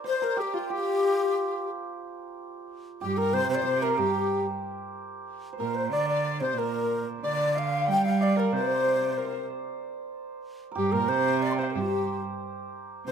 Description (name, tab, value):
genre	chinese traditional, Chinese chamber ensemble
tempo	92 BPM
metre	2/4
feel	rubato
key	G yu mode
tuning	A4 = 441 Hz
part	hammered dulcimer	second line	0.0-13.1 s	F4 to G5	-32 LUFS	right 5 dB	none
part	breathy mellow xiao	melody	0.1-13.1 s	F4 to C6	-28 LUFS	left 2 dB	none
part	large dizi	second line	0.1-13.1 s	F4 to G5	-31 LUFS	left 7 dB	none
part	rich cello	second line	3.0-13.1 s	G2 to G3	-30 LUFS	right 4 dB	none
room	light reverb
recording	close, detailed microphones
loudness	-24 LUFS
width	side -7 dB against mid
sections	0.0-2.0 A section; 2.0-12.4 B section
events	none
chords	none